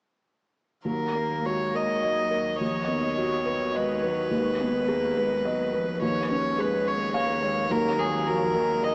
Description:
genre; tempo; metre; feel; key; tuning
neoclassical piano and strings; 106 BPM; 3/4; rubato; Eb minor; A4 = 440 Hz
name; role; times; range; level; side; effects
warm cello; second line; 0.8-8.9 s; D#3 to Bb3; -34 LUFS; equal; none
felt-muted upright piano; accompaniment; 0.8-8.9 s; Eb2 to F5; -28 LUFS; equal; none
rich violin; melody; 0.9-8.9 s; Ab4 to Eb5; -26 LUFS; equal; none
rich double bass; bass; 0.9-8.9 s; Eb2; -36 LUFS; equal; none
room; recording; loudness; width
wet huge ambient reverb, RT60 7.9 s; in a vast, echoing space, small speaker sound; -23 LUFS; side -36 dB against mid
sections
0.9-8.9 A section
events
none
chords
0.9 Ebm; 2.6 B/D#; 4.3 Abm/Eb; 6.0 Db/Eb; 7.7 Ebm

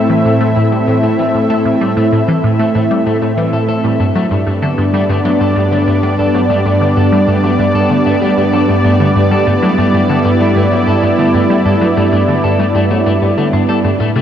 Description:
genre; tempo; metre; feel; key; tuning
ambient, sequencer-driven space music; 96 BPM; 4/4; straight; unclear; A4 = 440 Hz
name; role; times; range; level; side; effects
lush unison pad; sustained chords; 0.0-14.2 s; G2 to E5; -12 LUFS; equal; chorus
electric guitar at the edge of break-up; arpeggios; 0.0-14.2 s; E3 to A4; -22 LUFS; left 3 dB; auto-pan, ping-pong delay
resonant blip pluck; riff; 0.0-14.2 s; G2 to A3; -16 LUFS; equal; phaser, vintage 12-bit sampler grit, ping-pong delay
room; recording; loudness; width
wet huge ambient reverb, RT60 7.5 s; worn, warbling old tape, cassette tape, warbly pitch drift; -10 LUFS; side -9 dB against mid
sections
0.0-14.2 A section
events
fade-in on clean electric guitar 0.0-14.2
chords
0.0 Am; 4.0 G

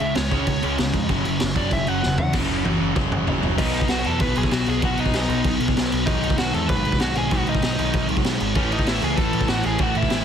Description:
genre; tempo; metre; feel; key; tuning
punk rock; 193 BPM; 4/4; straight; B mixolydian from 3.6 s; A4 = 442 Hz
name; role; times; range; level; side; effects
dark smooth lead guitar; melody; 0.0-10.2 s; C#4 to B5; -26 LUFS; equal; overdrive
distorted electric guitar; riff; 0.0-10.2 s; F#2 to C#4; -27 LUFS; left 14 dB; distortion
overdriven electric guitar; riff; 0.0-3.8, 8.6-10.2 s; F#2 to C#4; -30 LUFS; right 1 dB; none
sludgy distorted guitar; riff; 0.0-10.2 s; F#2 to C#4; -27 LUFS; right 14 dB; overdrive
growling picked electric bass; bass; 0.0-10.2 s; E1 to E#2; -27 LUFS; equal; overdrive
raw garage drum kit; drums; 0.0-10.2 s; crash cymbal, kick drum, snare drum, toms; -24 LUFS; equal; none
room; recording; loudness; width
little or no reverb; dense, heavily limited modern master; -19 LUFS; side -8 dB against mid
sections
0.0-2.3 A section; 2.3-3.6 B section; 3.6-10.2 C section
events
lead electric guitar solo 0.0-2.3; drum fill 2.0-2.3, 2.3-3.6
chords
0.0 C#5; 1.1 F#5; 3.6 B; 6.1 G#m/B; 8.6 A5

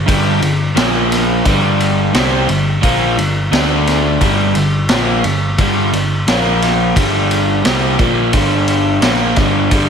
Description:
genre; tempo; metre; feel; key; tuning
classic rock; 87 BPM; 4/4; straight; unclear; A4 = 440 Hz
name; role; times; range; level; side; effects
picked electric bass; bass; 0.0-9.9 s; G1 to D2; -19 LUFS; equal; none
crunchy overdriven guitar; riff; 0.1-9.9 s; G2 to D4; -14 LUFS; equal; none
vintage drum kit; drums; 0.1-9.9 s; kick drum, ride cymbal, snare drum; -17 LUFS; equal; none
room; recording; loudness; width
moderate lush hall reverb, RT60 2.6 s; big arena sound; -12 LUFS; side -7 dB against mid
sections
0.0-9.9 A section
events
none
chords
0.0 G5; 0.8 Bb5; 1.5 G5; 3.5 D5; 4.2 G5; 6.3 Bb5; 7.0 G5

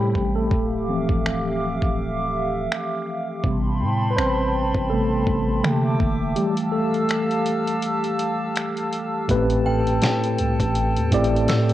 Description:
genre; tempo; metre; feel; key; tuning
contemporary R&B; 82 BPM; 4/4; swing 58% on 16ths; A minor; A4 = 443 Hz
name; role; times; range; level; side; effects
mellow tine electric piano; accompaniment; 0.0-11.7 s; A2 to D5; -23 LUFS; equal; medium stereo tremolo, cassette tape
hollow soft pad; sustained chords; 0.0-11.7 s; G4 to E6; -26 LUFS; equal; chorus, cassette tape
long sustained 808-style bass; bass; 0.0-11.7 s; D1 to C3; -26 LUFS; equal; none
dusty soul sampler-style drum kit; drums; 0.2-11.7 s; finger snaps, hi-hat, kick drum, snare drum; -26 LUFS; equal; vintage 12-bit sampler grit, cassette tape
synth chime; texture; 9.7-11.7 s; G5 to E6; -32 LUFS; equal; ensemble chorus, tremolo, cassette tape, analog delay
room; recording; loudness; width
light reverb; home recording on cassette; -20 LUFS; side -13 dB against mid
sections
0.0-9.3 A section; 9.3-11.7 B section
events
tine electric piano solo 0.0-9.3; kick muted 6.4-9.3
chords
0.0 Am9; 0.5 Dm9; 3.4 Am9; 5.6 C13; 6.4 Fmaj9; 9.3 Am9

